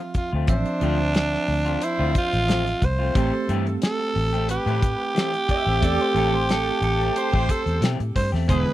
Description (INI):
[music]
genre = straight-eighth soul blues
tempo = 90 BPM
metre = 4/4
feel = swing 53% on 16ths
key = A minor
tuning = A4 = 442 Hz
[part]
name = growling tenor saxophone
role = melody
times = 0.0-8.7 s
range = D4 to C5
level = -25 LUFS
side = right 2 dB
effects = none
[part]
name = bell-like tine electric piano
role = accompaniment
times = 0.0-8.7 s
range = D3 to E5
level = -29 LUFS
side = right 4 dB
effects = fast stereo tremolo
[part]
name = electric guitar through a small old amp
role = stabs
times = 0.0-8.7 s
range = E3 to G#4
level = -30 LUFS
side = left 5 dB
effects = none
[part]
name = warm soul drum kit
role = drums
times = 0.1-8.7 s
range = hi-hat, kick drum, snare drum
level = -24 LUFS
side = left 1 dB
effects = none
[part]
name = vintage muted fingered electric bass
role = bass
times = 0.3-8.6 s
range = E1 to B2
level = -24 LUFS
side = equal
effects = none
[part]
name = bright horn section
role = sustained chords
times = 0.5-8.7 s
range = D4 to C5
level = -31 LUFS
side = left 1 dB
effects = none
[part]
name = electric guitar through a small old amp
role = second line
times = 5.5-7.3 s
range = A4 to E5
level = -29 LUFS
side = right 2 dB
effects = analog chorus
[sound]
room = little or no reverb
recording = dry, close 1970s-style studio recording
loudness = -20 LUFS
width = side -14 dB against mid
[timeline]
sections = 0.0-8.7 A section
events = none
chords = 0.0 Dm7; 3.2 Am7